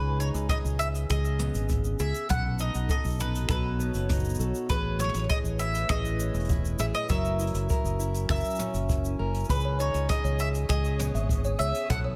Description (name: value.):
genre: folktronica.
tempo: 100 BPM.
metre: 4/4.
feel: straight.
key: C# minor.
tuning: A4 = 440 Hz.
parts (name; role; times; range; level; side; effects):
bowl-back mandolin; melody; 0.0-12.0 s; B4 to F#5; -35 LUFS; equal; tape echo.
warbly tape-like pad; sustained chords; 0.0-12.2 s; F#3 to G#5; -41 LUFS; equal; chorus, built-in reverb, phaser.
fingerpicked plugged-in steel-string acoustic guitar; arpeggios; 0.0-12.2 s; B2 to A#4; -38 LUFS; equal; none.
fingered electric bass; bass; 0.0-12.2 s; E1 to C#2; -31 LUFS; equal; none.
jazz brush drum kit; drums; 0.2-12.0 s; finger snaps, hi-hat, shaker, toms; -40 LUFS; equal; none.
kick drum; drums; 0.5-12.0 s; none; -32 LUFS; equal; none.
flickering grainy texture; texture; 10.4-12.2 s; C#5 to D#6; -47 LUFS; equal; built-in reverb.
music box; second line; 9.6-12.2 s; C#5 to G#5; -38 LUFS; equal; vintage 12-bit sampler grit, digital delay.
room: light reverb, studio reverb.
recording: none.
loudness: -28 LUFS.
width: mono.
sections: 0.0-12.2 A section.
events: none.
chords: 0.0 C#sus2; 2.3 B7; 4.7 Amaj7; 7.1 F#7; 9.5 C#m9.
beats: 0.49 1.09 1.70 | 2.29 2.90 3.50 4.09 | 4.70 5.29 5.89 6.50 | 7.09 7.70 8.29 8.89 | 9.49 10.10 10.70 11.29 | 11.89.